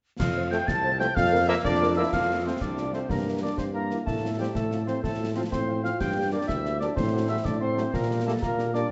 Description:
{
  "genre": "military-style march for wind band",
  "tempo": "124 BPM (dotted quarters)",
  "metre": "6/8",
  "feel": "straight",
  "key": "F major",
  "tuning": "A4 = 441 Hz",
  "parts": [
    { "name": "dark cornet", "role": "melody", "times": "0.2-8.8 s", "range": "A4 to A5", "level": "-35 LUFS", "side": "equal", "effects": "none" },
    { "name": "mellow wooden piccolo", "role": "second line", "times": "0.2-8.9 s", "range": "F5 to A6", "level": "-35 LUFS", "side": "equal", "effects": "none" },
    { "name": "warm woodwind section", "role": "second line", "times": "0.2-8.9 s", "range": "F4 to A5", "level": "-37 LUFS", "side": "equal", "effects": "none" },
    { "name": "clear tuba", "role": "bass", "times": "0.2-8.8 s", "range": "C2 to Bb2", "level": "-31 LUFS", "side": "equal", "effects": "none" },
    { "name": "concert snare drum, clash cymbals and concert bass drum", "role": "drums", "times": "0.2-8.9 s", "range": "none", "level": "-35 LUFS", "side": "equal", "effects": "none" },
    { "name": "dark French horn section", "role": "accompaniment", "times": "0.4-8.8 s", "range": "F3 to C5", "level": "-39 LUFS", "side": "equal", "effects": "none" },
    { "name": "warm trombone section", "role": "sustained chords", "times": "0.5-8.8 s", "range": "E3 to C4", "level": "-38 LUFS", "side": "equal", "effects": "none" },
    { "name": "warm euphonium", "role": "second line", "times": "1.6-8.9 s", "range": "F3 to G4", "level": "-33 LUFS", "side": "equal", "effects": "none" }
  ],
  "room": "wet concert hall reverb, RT60 1.8 s",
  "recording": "nothing above 7.9 kHz",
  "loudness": "-26 LUFS",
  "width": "mono",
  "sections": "0.2-2.1 A section; 2.1-8.9 B section",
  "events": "none",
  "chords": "0.2 F; 1.2 Bb/F; 2.1 F; 3.1 Edim/G; 4.1 F/A; 6.0 Gm; 7.0 F#dim/A; 7.9 Gm/Bb",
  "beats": "| 0.20 0.68 | 1.16 1.65 | 2.13 2.62 | 3.10 3.58 | 4.07 4.55 | 5.04 5.52 | 6.01 6.49 | 6.97 7.46 | 7.94 8.43"
}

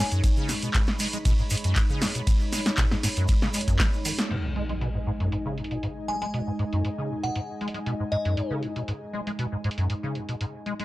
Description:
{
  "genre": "acid house",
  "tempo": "118 BPM",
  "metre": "4/4",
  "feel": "straight",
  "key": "G# minor pentatonic",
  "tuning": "A4 = 441 Hz",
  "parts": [
    { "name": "glassy synth bell", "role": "melody", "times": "0.0-0.1, 6.1-8.5 s", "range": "D#5 to G#5", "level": "-34 LUFS", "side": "left 1 dB", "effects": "chorus, analog delay" },
    { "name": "warm analog pad", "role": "sustained chords", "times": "0.0-10.8 s", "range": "G#3 to B5", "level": "-34 LUFS", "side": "equal", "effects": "chorus, sidechain pumping" },
    { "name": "acid bass, square", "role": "riff", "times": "0.0-10.8 s", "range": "F#2 to G#3", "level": "-29 LUFS", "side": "equal", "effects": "ensemble chorus, sidechain pumping, analog delay" },
    { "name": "punchy analog drum machine", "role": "drums", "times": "0.1-10.8 s", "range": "crash cymbal, handclaps, hi-hat, ride cymbal, snare drum", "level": "-30 LUFS", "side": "equal", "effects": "low-pass filter on hats, low-pass filter on cymbals, low-pass filter on snare" },
    { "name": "maracas", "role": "percussion", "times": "0.1-4.3 s", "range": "none", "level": "-37 LUFS", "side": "right 2 dB", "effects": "none" },
    { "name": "electronic kick drum", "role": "drums", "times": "0.2-3.9 s", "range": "none", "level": "-24 LUFS", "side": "equal", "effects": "none" },
    { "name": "impact", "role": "sound effects", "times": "4.3-6.3 s", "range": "none", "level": "-33 LUFS", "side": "equal", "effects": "none" }
  ],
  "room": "light reverb",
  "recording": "dry, gritty hardware recording",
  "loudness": "-24 LUFS",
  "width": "side -17 dB against mid",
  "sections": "0.0-4.3 A section; 4.3-10.8 B section",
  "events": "drop 0.0-4.3; drum fill 3.8-4.3; band accent 4.2; impact 4.3-6.3; filter sweep on acid bass 4.3-10.8",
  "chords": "0.0 G#5",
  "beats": "| 0.24 0.74 1.25 1.76 | 2.27 2.78 3.29 3.80 | 4.30 4.81 5.32 5.83 | 6.34 6.85 7.36 7.86 | 8.37 8.88 9.39 9.90 | 10.41"
}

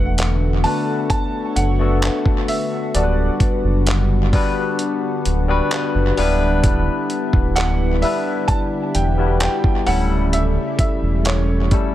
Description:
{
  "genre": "contemporary R&B",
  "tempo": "65 BPM",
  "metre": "4/4",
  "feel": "straight",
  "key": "D major",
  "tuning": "A4 = 439 Hz",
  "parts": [
    { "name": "warm baby grand piano", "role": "melody", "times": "0.0-11.9 s", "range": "C#5 to A5", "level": "-25 LUFS", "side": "right 2 dB", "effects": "analog delay" },
    { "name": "barky tine electric piano", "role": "accompaniment", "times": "0.0-11.9 s", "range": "G3 to B4", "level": "-22 LUFS", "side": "left 4 dB", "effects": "lush chorus" },
    { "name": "lush unison pad", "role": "sustained chords", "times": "0.0-11.9 s", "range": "C#3 to C#5", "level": "-25 LUFS", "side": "equal", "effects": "chorus, sidechain pumping" },
    { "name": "sub bass with octave", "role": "bass", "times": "0.0-11.7 s", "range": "D1 to F#1", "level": "-18 LUFS", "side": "equal", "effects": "none" },
    { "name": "dusty soul sampler-style drum kit", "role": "drums", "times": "0.2-11.9 s", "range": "handclaps, hi-hat, kick drum", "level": "-20 LUFS", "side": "equal", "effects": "analog delay" }
  ],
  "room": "little or no reverb",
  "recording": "echo-heavy mix",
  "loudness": "-16 LUFS",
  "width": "side -13 dB against mid",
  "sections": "0.0-11.9 A section",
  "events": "none",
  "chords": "0.0 D6; 2.9 Gmaj7/D; 6.2 Em7/D; 9.9 A7/D",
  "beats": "0.17 1.10 2.02 | 2.94 3.87 4.79 5.71 | 6.64 7.56 8.48 9.41 | 10.33 11.25"
}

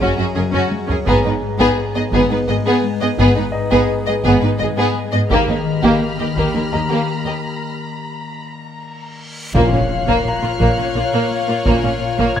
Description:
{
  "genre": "cinematic, suspense film score",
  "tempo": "85 BPM",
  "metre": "3/4",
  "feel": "straight",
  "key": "Bb phrygian",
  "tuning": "A4 = 439 Hz",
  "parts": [
    { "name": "warm symphonic violin section", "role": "melody", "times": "0.0-12.4 s", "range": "Gb4 to Eb5", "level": "-23 LUFS", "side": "left 2 dB", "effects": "none" },
    { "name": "warm symphonic violin section", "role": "second line", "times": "0.0-12.4 s", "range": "Bb3 to Ab4", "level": "-21 LUFS", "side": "equal", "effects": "none" },
    { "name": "rich symphonic viola section", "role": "accompaniment", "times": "0.0-12.3 s", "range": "Bb3 to Db4", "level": "-22 LUFS", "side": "right 2 dB", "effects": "none" },
    { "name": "evolving wavetable pad", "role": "sustained chords", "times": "0.0-12.4 s", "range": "F4 to Bb5", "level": "-28 LUFS", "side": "equal", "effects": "phaser, built-in reverb" },
    { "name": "concert harp", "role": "riff", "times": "0.0-12.4 s", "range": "Gb2 to Eb4", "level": "-24 LUFS", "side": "left 7 dB", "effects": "none" },
    { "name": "rich symphonic double bass section", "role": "bass", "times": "0.0-11.7 s", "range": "Gb1 to Eb2", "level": "-24 LUFS", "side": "right 3 dB", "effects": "none" },
    { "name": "warm symphonic cello section", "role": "bass", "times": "0.0-12.3 s", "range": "Eb2 to Bb2", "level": "-23 LUFS", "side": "right 3 dB", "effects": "none" },
    { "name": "solo taiko drums", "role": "drums", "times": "0.0-12.4 s", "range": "none", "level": "-24 LUFS", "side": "right 1 dB", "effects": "none" },
    { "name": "clear concert grand piano", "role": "texture", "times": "0.0-12.4 s", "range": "Bb3 to Ab6", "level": "-31 LUFS", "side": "left 1 dB", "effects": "none" },
    { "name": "rich symphonic violin section", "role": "texture", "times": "0.0-0.7, 5.3-12.4 s", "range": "Db5 to D7", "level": "-30 LUFS", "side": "left 2 dB", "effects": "none" },
    { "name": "reverse cymbal and impact", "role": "sound effects", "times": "9.3-11.7 s", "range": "none", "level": "-26 LUFS", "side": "equal", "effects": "none" },
    { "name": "warm French horn section", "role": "sustained chords", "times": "9.5-11.9 s", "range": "Db4 to F4", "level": "-26 LUFS", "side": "left 1 dB", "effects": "none" },
    { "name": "timpani", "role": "percussion", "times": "9.5-10.6 s", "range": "Bb2", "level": "-25 LUFS", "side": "left 1 dB", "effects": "none" }
  ],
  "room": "moderate concert hall reverb, RT60 2.4 s",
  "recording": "close, detailed microphones",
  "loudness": "-15 LUFS",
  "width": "side -9 dB against mid",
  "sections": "0.0-9.5 A section; 9.5-12.4 A section",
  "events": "drum fill 0.5-1.1, 9.0-9.5; break 7.4-9.5; reverse cymbal 9.3; impact 9.5-11.7",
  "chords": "0.0 Gbadd9; 1.1 Abm; 5.3 Eb; 9.5 Bbm",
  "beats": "0.36 | 1.07 1.77 2.48 | 3.19 3.89 4.60 | 5.30 6.01 6.72 | 7.42 8.13 8.83 | 9.54 10.25 10.95 | 11.66 12.36"
}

